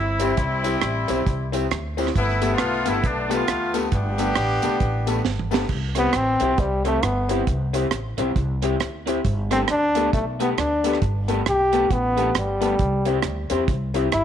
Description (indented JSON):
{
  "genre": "ska",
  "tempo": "135 BPM",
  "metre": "4/4",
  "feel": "swing 60% on 8ths",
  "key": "C major",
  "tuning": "A4 = 442 Hz",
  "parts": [
    { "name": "clear horn section", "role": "melody", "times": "0.0-5.2 s", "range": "G3 to G4", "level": "-24 LUFS", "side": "left 1 dB", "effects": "none" },
    { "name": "upright bass", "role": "bass", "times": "0.0-14.2 s", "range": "G1 to E2", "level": "-26 LUFS", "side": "equal", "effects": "none" },
    { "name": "electric guitar through a small old amp", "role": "accompaniment", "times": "0.2-14.1 s", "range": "A3 to C5", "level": "-30 LUFS", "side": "right 8 dB", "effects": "wide subtle chorus" },
    { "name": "clear upright piano", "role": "stabs", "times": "0.2-14.1 s", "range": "B3 to A4", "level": "-28 LUFS", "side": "left 11 dB", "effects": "none" },
    { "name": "deep reggae drum kit", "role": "drums", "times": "0.2-14.2 s", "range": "crash cymbal, hi-hat, kick drum, rim click, snare drum, toms", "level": "-26 LUFS", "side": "right 4 dB", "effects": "none" },
    { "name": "tambourine", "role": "percussion", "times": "0.2-5.6 s", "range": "none", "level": "-43 LUFS", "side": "left 12 dB", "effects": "none" },
    { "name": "bright trombone", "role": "melody", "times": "6.0-14.2 s", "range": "G3 to G4", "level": "-22 LUFS", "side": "equal", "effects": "none" }
  ],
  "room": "moderate plate reverb, RT60 1.6 s, small room reverb",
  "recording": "1960s-style stereo with parts hard left and right",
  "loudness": "-20 LUFS",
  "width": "side -9 dB against mid",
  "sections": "0.0-5.7 A section; 5.7-14.2 B section",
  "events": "drum fill 5.3-5.7; trombone solo 5.7-14.2",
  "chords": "0.0 C; 2.2 Gadd9; 5.7 C; 9.2 Gadd9; 12.8 C"
}